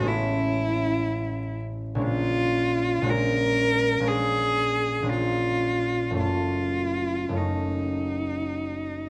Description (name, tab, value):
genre	classical, impressionist duo for cello and harp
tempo	50-62 BPM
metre	4/4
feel	rubato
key	unclear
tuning	A4 = 442 Hz
part	rich cello	melody	0.0-9.1 s	Eb4 to Bb4	-28 LUFS	equal	none
part	concert harp	accompaniment	0.0-9.1 s	Gb1 to E4	-29 LUFS	equal	none
room	moderate recital hall reverb, RT60 1.7 s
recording	close, detailed microphones, vinyl crackle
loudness	-25 LUFS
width	mono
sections	0.0-9.1 A section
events	none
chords	0.0 Amaj9; 2.0 Bbm7; 6.2 Gbm6